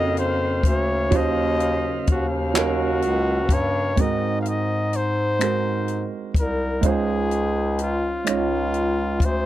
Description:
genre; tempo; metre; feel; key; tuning
slow six-eight R&B; 42 BPM (dotted quarters); 6/8; straight; unclear; A4 = 439 Hz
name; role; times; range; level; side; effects
clear flugelhorn; melody; 0.0-9.5 s; F4 to F5; -25 LUFS; left 2 dB; none
warm grand piano; accompaniment; 0.0-9.5 s; Gb3 to F5; -26 LUFS; right 7 dB; none
tonewheel organ; sustained chords; 0.0-3.9 s; Db3 to F5; -31 LUFS; left 2 dB; overdrive, slow rotary speaker
warm bass clarinet; bass; 0.0-9.5 s; C2 to Ab2; -25 LUFS; left 1 dB; none
compact cocktail drum kit; drums; 0.2-9.4 s; finger snaps, handclaps, hi-hat, kick drum; -22 LUFS; left 1 dB; none
room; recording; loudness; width
little or no reverb; dry, close 1970s-style studio recording; -20 LUFS; side -14 dB against mid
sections
0.0-4.0 A section; 4.0-9.5 B section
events
none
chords
0.0 Ebm9; 4.0 Ab9; 6.8 Dbmaj9

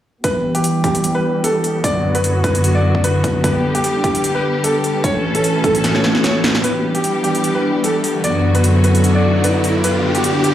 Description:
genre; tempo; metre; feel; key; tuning
heavy wobble dubstep; 150 BPM; 4/4; swing 54% on 16ths, half-time; E minor; A4 = 440 Hz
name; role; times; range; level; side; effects
clear grand piano; melody; 0.2-10.5 s; G4 to D5; -20 LUFS; equal; tape echo
rich studio string section; sustained chords; 0.2-10.5 s; F#2 to A4; -17 LUFS; equal; sidechain pumping, low-pass filter
big-room dance drum kit; drums; 0.2-10.5 s; hi-hat, snare drum; -22 LUFS; equal; none
electronic kick drum; drums; 0.2-5.7 s; none; -21 LUFS; right 1 dB; high-pass filter on kick, high-pass filter on room
airy breathy pad; texture; 0.2-10.5 s; A2 to D5; -22 LUFS; left 1 dB; chorus, sidechain pumping
riser; sound effects; 8.0-10.5 s; none; -24 LUFS; right 2 dB; none
room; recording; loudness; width
light reverb; played on a big sound system in a bare room, large studio reverb; -14 LUFS; side -11 dB against mid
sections
0.2-6.6 A section; 6.6-10.5 B section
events
fade-in on analog synth pad 0.2-6.6; filter sweep on string section 0.2-6.6; kick drops out 5.8-6.6; drum fill 5.8-6.6; build-up 6.6-10.5; riser 8.0-10.5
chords
0.2 Em; 1.8 Bm/F#; 3.4 G; 5.0 A; 6.6 Em; 8.2 Bm/F#; 9.8 G

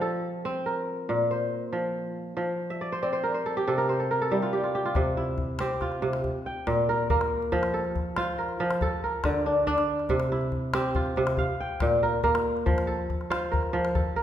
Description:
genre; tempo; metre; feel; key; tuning
west african traditional, West African string and xylophone music; 93 BPM (dotted quarters); 12/8; straight; F major; A4 = 440 Hz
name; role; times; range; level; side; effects
kora; arpeggios; 0.0-14.2 s; Bb2 to G5; -25 LUFS; equal; none
calabash; percussion; 5.0-14.0 s; none; -31 LUFS; left 2 dB; none
room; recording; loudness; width
wet recital hall reverb, RT60 1.9 s; minimal, uncompressed stereo recording; -25 LUFS; side -10 dB against mid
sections
0.0-4.9 A section; 4.9-14.2 B section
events
kora fill 2.7-4.9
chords
0.0 F; 1.1 Bb5; 2.4 F5; 3.7 C5; 4.9 C; 6.2 Bb5; 7.5 F; 8.8 D5; 10.1 C; 11.4 Bb5; 12.7 F

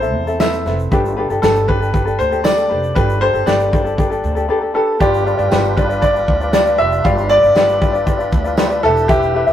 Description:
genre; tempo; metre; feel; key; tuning
acoustic pop; 117 BPM; 4/4; straight; unclear; A4 = 440 Hz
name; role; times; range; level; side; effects
bright upright piano; melody; 0.0-9.5 s; G4 to F5; -16 LUFS; equal; ping-pong delay
ukulele; accompaniment; 0.0-9.5 s; C4 to E5; -18 LUFS; left 2 dB; none
upright bass; bass; 0.0-9.5 s; E1 to E2; -22 LUFS; right 1 dB; none
natural country drum kit; drums; 0.0-9.5 s; kick drum, shaker, snare drum; -19 LUFS; equal; none
tambourine; percussion; 0.4-8.7 s; none; -37 LUFS; right 3 dB; none
tonewheel organ; sustained chords; 5.0-9.5 s; E3 to B4; -26 LUFS; right 1 dB; overdrive
room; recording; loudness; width
light reverb; rough rehearsal-room recording; -13 LUFS; side -10 dB against mid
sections
0.0-5.0 A section; 5.0-9.5 B section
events
none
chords
0.0 Amadd9; 0.9 Gadd9; 5.0 G7; 8.8 Em

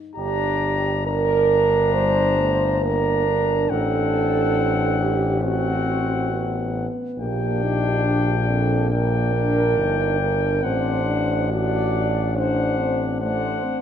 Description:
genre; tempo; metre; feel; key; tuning
classical, hymn-like piece for brass band; 69 BPM; 4/4; rubato; G minor; A4 = 441 Hz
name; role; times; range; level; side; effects
mellow euphonium; accompaniment; 0.0-13.8 s; G3 to F#4; -28 LUFS; left 4 dB; none
clear flugelhorn; melody; 0.2-13.8 s; F#5 to Bb5; -27 LUFS; left 8 dB; none
warm French horn section; second line; 0.2-13.8 s; F#4 to D5; -23 LUFS; right 4 dB; none
clear trombone; accompaniment; 0.2-13.8 s; C4 to D4; -29 LUFS; right 1 dB; none
clear tuba; bass; 0.2-13.8 s; G1 to Bb1; -23 LUFS; equal; none
room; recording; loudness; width
moderate recital hall reverb, RT60 1.8 s; dark, warm production; -19 LUFS; side -9 dB against mid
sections
0.2-13.8 A section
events
none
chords
0.2 Gm; 3.7 F#dim/A; 7.2 Gm/Bb; 10.6 D7/A

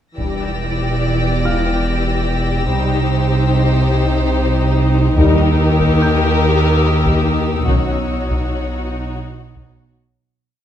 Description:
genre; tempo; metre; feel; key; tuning
cinematic, suspense film score; 72 BPM; 3/4; straight; unclear; A4 = 440 Hz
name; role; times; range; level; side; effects
dark studio violin section; melody; 0.2-9.9 s; A#4 to D5; -24 LUFS; left 2 dB; none
warm chamber violin section; second line; 0.2-9.9 s; F#4 to G4; -24 LUFS; left 4 dB; none
warm chamber viola section; accompaniment; 0.2-9.9 s; E3 to Eb4; -23 LUFS; left 1 dB; none
mellow French horn section; sustained chords; 0.2-8.0 s; D#3 to D#4; -23 LUFS; left 4 dB; none
clear chamber double bass section; bass; 0.2-9.9 s; E1 to D#2; -22 LUFS; right 3 dB; none
dark chamber cello section; bass; 0.2-9.9 s; E2 to D#3; -20 LUFS; right 2 dB; none
pure sine sub bass; drone; 0.2-10.2 s; E1 to D#2; -21 LUFS; left 1 dB; none
taiko ensemble; drums; 0.2-10.4 s; none; -21 LUFS; equal; none
warm chamber violin section; texture; 0.2-9.7 s; D#6 to A#6; -29 LUFS; left 3 dB; none
clear baby grand piano; texture; 1.5-10.2 s; A#4 to G6; -30 LUFS; left 1 dB; none
room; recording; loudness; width
moderate scoring stage reverb, RT60 1.7 s; dark, warm production; -14 LUFS; side -10 dB against mid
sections
0.2-10.2 A section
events
fade-out 7.7-10.2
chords
0.2 Em7; 2.7 Cm; 5.2 D#; 7.7 Badd9

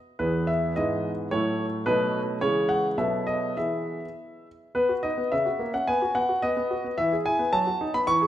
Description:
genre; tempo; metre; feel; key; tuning
classical-period piano sonatina; 108 BPM; 2/4; rubato; E major, B major from 4.7 s; A4 = 441 Hz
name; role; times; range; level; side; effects
clear concert grand piano; solo; 0.2-8.3 s; E2 to C#6; -23 LUFS; equal; none
room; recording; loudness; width
moderate recital hall reverb, RT60 1.8 s; none; -23 LUFS; side -12 dB against mid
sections
0.0-4.7 A section; 4.7-8.3 B section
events
none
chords
0.2 E; 0.8 E/G#; 1.3 F#m7/A; 1.9 B7; 2.4 C#m; 3.0 B7; 3.6 E; 4.7 B; 5.3 F#7/C#; 5.9 B; 7.0 E; 7.5 B7/F#

